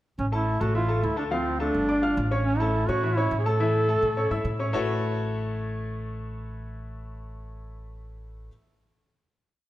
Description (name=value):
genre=jazz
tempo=211 BPM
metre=4/4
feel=straight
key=A major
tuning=A4 = 438 Hz
part: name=warm duduk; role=melody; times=0.2-4.5 s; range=C4 to A4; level=-26 LUFS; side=right 1 dB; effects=none
part: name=upright bass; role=bass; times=0.2-8.5 s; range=G1 to A2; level=-29 LUFS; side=equal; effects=none
part: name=warm grand piano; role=accompaniment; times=0.3-8.5 s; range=E3 to F6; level=-29 LUFS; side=left 2 dB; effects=none
room=wet recital hall reverb, RT60 1.6 s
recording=none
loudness=-23 LUFS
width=side -15 dB against mid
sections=0.2-4.7 A section; 4.7-7.0 final chord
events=none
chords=0.2 A5; 1.3 Dm7; 1.9 Gsus2; 2.5 A; 4.7 A69